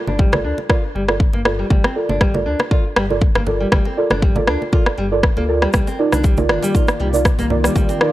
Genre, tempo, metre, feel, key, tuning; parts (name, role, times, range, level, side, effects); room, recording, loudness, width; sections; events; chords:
afro house; 119 BPM; 4/4; swing 54% on 16ths; G minor; A4 = 440 Hz
deep mellow chord stab; stabs; 0.0-8.1 s; Eb4 to D5; -21 LUFS; right 3 dB; chorus, vintage 12-bit sampler grit, sidechain pumping, tape echo
nylon-string guitar; arpeggios; 0.1-8.0 s; G3 to F4; -25 LUFS; left 1 dB; sidechain pumping, low-pass filter, tape echo
round analog bass; bass; 0.1-7.8 s; G1 to D2; -23 LUFS; equal; sidechain pumping
congas; percussion; 0.1-8.0 s; -26 LUFS; right 2 dB
electronic kick drum; drums; 0.2-7.9 s; -16 LUFS; equal
electronic rim click; drums; 0.3-8.1 s; -21 LUFS; equal
warm analog pad; sustained chords; 5.7-8.1 s; Eb3 to D5; -25 LUFS; left 2 dB; chorus, sidechain pumping
egg shaker; percussion; 5.7-8.0 s; -32 LUFS; right 3 dB
little or no reverb; dry, gritty hardware recording; -14 LUFS; side -15 dB against mid
0.0-8.1 A section
filter sweep on synth stab 0.0-8.1
0.0 Gm7; 5.7 Cm11